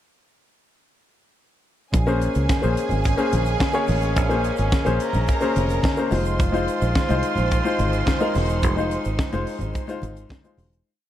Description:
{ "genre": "disco", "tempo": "108 BPM", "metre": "4/4", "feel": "straight", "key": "Bb minor", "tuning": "A4 = 440 Hz", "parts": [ { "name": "clear studio string section", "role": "second line", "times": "1.9-10.5 s", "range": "Ab4 to C6", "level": "-29 LUFS", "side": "right 4 dB", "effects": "none" }, { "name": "muted French horn section", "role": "sustained chords", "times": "1.9-10.8 s", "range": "Db3 to F4", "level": "-30 LUFS", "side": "right 2 dB", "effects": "none" }, { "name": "fingered electric bass", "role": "bass", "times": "1.9-10.8 s", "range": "E1 to Db2", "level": "-23 LUFS", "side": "right 1 dB", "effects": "none" }, { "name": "tight funk drum kit", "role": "drums", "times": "1.9-10.9 s", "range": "hi-hat, kick drum, snare drum", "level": "-24 LUFS", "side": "equal", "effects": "none" }, { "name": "congas", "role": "percussion", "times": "1.9-10.7 s", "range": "none", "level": "-32 LUFS", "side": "left 1 dB", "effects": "none" }, { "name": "egg shaker", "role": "percussion", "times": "1.9-10.9 s", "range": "none", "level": "-49 LUFS", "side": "right 15 dB", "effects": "none" }, { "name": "warm concert grand piano", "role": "accompaniment", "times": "2.1-10.9 s", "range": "Ab3 to Db5", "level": "-25 LUFS", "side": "left 4 dB", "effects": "none" } ], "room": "studio reverb", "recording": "dark, warm production", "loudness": "-19 LUFS", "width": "side -12 dB against mid", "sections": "1.9-10.9 verse", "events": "fade-out 8.6-10.9", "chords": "1.9 Bbm9; 6.1 Fm7" }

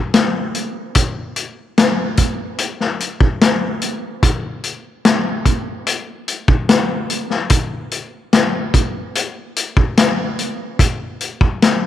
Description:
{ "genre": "rock", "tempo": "73 BPM", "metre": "4/4", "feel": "straight", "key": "none", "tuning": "none", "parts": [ { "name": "vintage drum kit", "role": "drums", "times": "0.1-11.8 s", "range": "hi-hat, kick drum, snare drum", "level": "-15 LUFS", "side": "left 1 dB", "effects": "none" } ], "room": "moderate plate reverb, RT60 2.6 s", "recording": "1960s-style stereo", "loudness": "-16 LUFS", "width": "side -11 dB against mid", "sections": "0.0-11.9 A section", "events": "none", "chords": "none" }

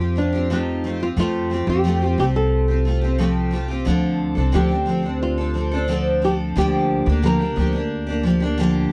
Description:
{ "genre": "acoustic pop", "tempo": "89 BPM", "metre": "4/4", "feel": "straight", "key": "unclear", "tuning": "A4 = 438 Hz", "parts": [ { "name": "nylon-string guitar", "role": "melody", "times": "0.0-8.9 s", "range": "D4 to Bb4", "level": "-26 LUFS", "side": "equal", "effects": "none" }, { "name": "picked steel-string acoustic guitar", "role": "accompaniment", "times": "0.0-8.9 s", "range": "D3 to A4", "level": "-24 LUFS", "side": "equal", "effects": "double-tracked" }, { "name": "upright bass", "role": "bass", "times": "0.0-8.9 s", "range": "C2 to F2", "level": "-24 LUFS", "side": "equal", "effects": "none" } ], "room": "little or no reverb", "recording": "dry, close 1970s-style studio recording", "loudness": "-20 LUFS", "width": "mono", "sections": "0.0-3.9 A section; 3.9-8.9 B section", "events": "none", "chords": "0.0 Fadd9; 3.9 Dm7; 6.6 Gm7/D" }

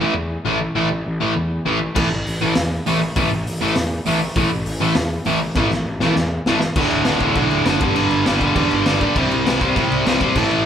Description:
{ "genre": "punk rock", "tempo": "200 BPM", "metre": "4/4", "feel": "straight", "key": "unclear", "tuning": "A4 = 439 Hz", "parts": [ { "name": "distorted electric guitar", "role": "riff", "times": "0.0-10.7 s", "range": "D2 to C4", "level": "-22 LUFS", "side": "left 7 dB", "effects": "overdrive" }, { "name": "distorted electric guitar", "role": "riff", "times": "0.0-10.6 s", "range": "D2 to C4", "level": "-20 LUFS", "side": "right 4 dB", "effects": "distortion" }, { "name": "fuzz picked electric bass", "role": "bass", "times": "0.0-10.6 s", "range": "D1 to A2", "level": "-25 LUFS", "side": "equal", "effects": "overdrive" }, { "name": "raw garage drum kit", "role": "drums", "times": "2.0-10.6 s", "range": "crash cymbal, hi-hat, kick drum, snare drum", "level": "-22 LUFS", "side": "equal", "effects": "none" } ], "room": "wet large studio reverb, RT60 1.5 s", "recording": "band playing live in one room", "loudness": "-16 LUFS", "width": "side -9 dB against mid", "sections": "0.0-6.8 A section; 6.8-10.7 B section", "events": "half time 0.0-6.8; drum fill 5.6-6.8", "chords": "0.0 A5; 6.8 D; 7.8 G5; 9.2 C5" }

